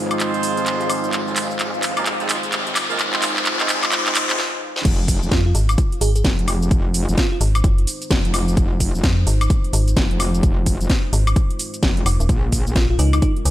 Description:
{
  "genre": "bass house",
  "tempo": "129 BPM",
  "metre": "4/4",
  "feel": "swing 62% on 16ths",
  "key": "F minor",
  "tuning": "A4 = 439 Hz",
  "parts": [
    { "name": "dark analog pad", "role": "sustained chords", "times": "0.0-13.5 s", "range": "Ab3 to C5", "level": "-30 LUFS", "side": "equal", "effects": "chorus, sidechain pumping" },
    { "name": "metallic wobble bass", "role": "bass", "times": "0.0-12.7 s", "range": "Eb1 to Bb1", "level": "-23 LUFS", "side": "equal", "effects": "distortion, chorus, overdrive, sidechain pumping, high-pass filter" },
    { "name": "riser", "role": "sound effects", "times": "1.0-4.4 s", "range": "none", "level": "-28 LUFS", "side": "left 4 dB", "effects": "none" },
    { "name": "granular cloud pad", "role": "texture", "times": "0.0-4.4, 13.4-13.5 s", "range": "Db4 to Ab5", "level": "-32 LUFS", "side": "equal", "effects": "built-in reverb, analog chorus, sidechain pumping" },
    { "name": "warm horn section", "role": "stabs", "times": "0.1-4.4 s", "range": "Bb3 to C5", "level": "-26 LUFS", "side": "right 4 dB", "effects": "sidechain pumping, analog delay" },
    { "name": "house drum kit", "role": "drums", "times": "0.1-13.5 s", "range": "cabasa, crash cymbal, handclaps, hi-hat, snare drum, woodblock", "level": "-22 LUFS", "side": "equal", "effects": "high-pass filter on hats, high-pass filter on snare, high-pass filter on perc, high-pass filter on cymbals, high-pass filter on room" },
    { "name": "electronic kick drum", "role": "drums", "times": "4.8-13.3 s", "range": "none", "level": "-19 LUFS", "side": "equal", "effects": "none" },
    { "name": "bell-like FM electric piano", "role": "melody", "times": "5.3-7.4, 12.8-13.3 s", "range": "Eb4 to Ab4", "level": "-28 LUFS", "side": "right 2 dB", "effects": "chorus, analog delay" },
    { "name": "metallic FM bass", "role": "bass", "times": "5.3-13.5 s", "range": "Eb1 to F2", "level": "-17 LUFS", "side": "equal", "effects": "tube saturation, sidechain pumping" }
  ],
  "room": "light reverb, digital ambience",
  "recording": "high-pass filter",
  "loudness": "-16 LUFS",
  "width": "side -14 dB against mid",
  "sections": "0.0-4.8 A section; 4.8-13.5 B section",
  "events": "build-up 0.0-4.8; drum fill 0.0-4.4, 4.4-4.8; filter sweep 0.0-4.8; riser 1.0-4.4; break 4.4-4.8; drop 4.8-13.5",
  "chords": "0.0 Fm7; 12.3 Bbm7"
}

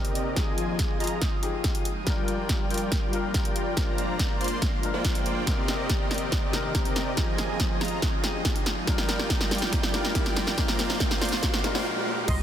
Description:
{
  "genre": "future bass",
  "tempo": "141 BPM",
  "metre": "4/4",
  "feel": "half-time",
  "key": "unclear",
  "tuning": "A4 = 440 Hz",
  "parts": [
    { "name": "felt-muted upright piano", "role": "accompaniment", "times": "0.0-12.3 s", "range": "Bb2 to Bb4", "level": "-35 LUFS", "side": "left 4 dB", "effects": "sidechain pumping, digital delay" },
    { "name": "ethereal airy pad", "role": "sustained chords", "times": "0.0-12.4 s", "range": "Eb3 to Ab4", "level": "-39 LUFS", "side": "right 1 dB", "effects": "ensemble chorus, built-in reverb, sidechain pumping" },
    { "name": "big bright polysynth", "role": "riff", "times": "0.0-12.4 s", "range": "F3 to C6", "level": "-30 LUFS", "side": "equal", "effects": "sidechain pumping, digital delay" },
    { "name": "big-room dance drum kit", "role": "drums", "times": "0.0-12.4 s", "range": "crash cymbal, hi-hat, snare drum", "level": "-30 LUFS", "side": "equal", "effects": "none" },
    { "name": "riser and impact", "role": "sound effects", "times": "0.0-12.4 s", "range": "none", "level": "-40 LUFS", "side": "right 3 dB", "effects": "none" },
    { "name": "electronic kick drum", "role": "drums", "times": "0.4-12.4 s", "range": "none", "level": "-28 LUFS", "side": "equal", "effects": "none" },
    { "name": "warm velvety synth lead", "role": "melody", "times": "12.3-12.4 s", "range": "Eb5", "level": "-33 LUFS", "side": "left 1 dB", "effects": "chorus, sidechain pumping" },
    { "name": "wide unison pluck", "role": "arpeggios", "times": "12.3-12.4 s", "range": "C6", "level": "-36 LUFS", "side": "right 5 dB", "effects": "lush chorus, sidechain pumping" },
    { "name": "saturated sub bass", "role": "bass", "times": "12.3-12.4 s", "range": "C2", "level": "-27 LUFS", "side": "equal", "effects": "sidechain pumping" }
  ],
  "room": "moderate shimmer reverb, RT60 4.3 s",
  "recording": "dense, heavily limited modern master",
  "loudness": "-24 LUFS",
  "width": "side -10 dB against mid",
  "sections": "0.0-12.3 A section",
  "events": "build-up 0.0-12.3; drum fill 0.0-11.9; filter sweep on analog polysynth 0.0-12.3; stop 11.9-12.3",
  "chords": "0.4 Fm9; 1.9 Gm7; 3.8 Bb7; 5.5 Cm7; 7.2 Fm9; 8.7 Gm7; 10.6 Bb7"
}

